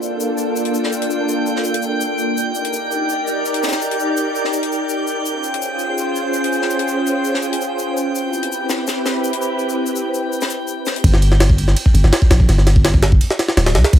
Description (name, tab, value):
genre	drum and bass, jungle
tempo	166 BPM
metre	4/4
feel	straight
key	unclear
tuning	A4 = 440 Hz
part	soft string machine	sustained chords	0.0-11.0 s	Bb3 to D5	-20 LUFS	equal	ensemble chorus
part	tight funk drum kit	drums	0.0-11.0 s	hi-hat, shaker, snare drum	-25 LUFS	left 4 dB	high-pass filter on hats, high-pass filter on snare, high-pass filter on perc, high-pass filter on room
part	drifting glass-harmonics texture	texture	0.1-11.0 s	G5 to G6	-25 LUFS	equal	chorus, built-in reverb
part	long sustained 808-style bass	bass	11.0-14.0 s	D1 to C2	-13 LUFS	equal	tube saturation
part	jungle sampler-style drum kit	drums	11.0-14.0 s	kick drum, ride cymbal, snare drum	-14 LUFS	equal	none
room	light reverb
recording	none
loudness	-15 LUFS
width	side -11 dB against mid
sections	0.0-11.0 A section; 11.0-14.0 B section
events	drop 11.0-14.0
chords	0.0 Gm9; 2.4 Ebmaj7; 5.3 C#maj7#11; 8.1 Cmaj7; 11.0 N.C.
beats	0.20 0.56 | 0.92 1.28 1.64 2.00 | 2.37 2.73 3.09 3.45 | 3.81 4.17 4.53 4.89 | 5.26 5.62 5.98 6.34 | 6.70 7.06 7.42 7.79 | 8.15 8.51 8.87 9.23 | 9.59 9.96 10.32 10.68 | 11.04 11.40 11.76 12.12 | 12.48 12.85 13.21 13.57 | 13.93